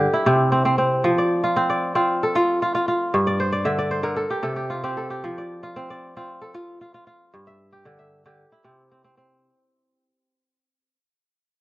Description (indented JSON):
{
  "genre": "west african traditional",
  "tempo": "114 BPM",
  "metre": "4/4",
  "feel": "straight",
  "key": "F major",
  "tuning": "A4 = 439 Hz",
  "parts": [
    { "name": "kora", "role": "solo", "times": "0.0-11.0 s", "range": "G2 to E5", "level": "-20 LUFS", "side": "equal", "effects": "none" }
  ],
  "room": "studio reverb",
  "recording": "home recording on cassette, lossy compression artefacts",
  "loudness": "-19 LUFS",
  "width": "side -18 dB against mid",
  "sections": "0.0-9.4 A section",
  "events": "fade-out 0.0-9.4; kora fill 3.3-5.2",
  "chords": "0.0 C; 1.0 F; 3.1 G5; 4.2 N.C.; 5.2 F; 7.3 G5; 8.4 C"
}